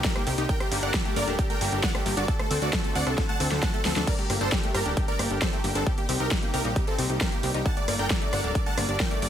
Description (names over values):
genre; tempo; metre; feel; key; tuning
uplifting trance; 134 BPM; 4/4; straight; G harmonic minor; A4 = 437 Hz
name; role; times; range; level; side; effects
supersaw chords; melody; 0.0-9.3 s; C4 to A5; -30 LUFS; right 1 dB; sidechain pumping, digital delay
lush unison pad; sustained chords; 0.0-9.3 s; C3 to Bb4; -35 LUFS; equal; chorus, sidechain pumping
wide unison pluck; arpeggios; 0.0-9.3 s; F#3 to Eb4; -34 LUFS; left 5 dB; vintage 12-bit sampler grit, sidechain pumping, digital delay
big-room dance drum kit; drums; 0.0-9.3 s; crash cymbal, hi-hat, rim click, snare drum; -30 LUFS; equal; overdrive, sidechain pumping on hats, studio reverb, sidechain pumping on cymbals
electronic kick drum; drums; 0.0-9.1 s; none; -27 LUFS; equal; overdrive, studio reverb
plucky analog bass; bass; 0.3-9.3 s; D1 to D2; -29 LUFS; equal; sidechain pumping
room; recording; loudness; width
digital ambience; none; -23 LUFS; side -10 dB against mid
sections
0.0-4.1 A section; 4.1-9.3 A section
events
drop 0.0-4.1, 4.1-9.3; drum fill 3.2-4.1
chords
0.5 Gmadd9; 2.3 D7; 4.1 Gmadd9; 5.9 Cm7; 7.7 Gmadd9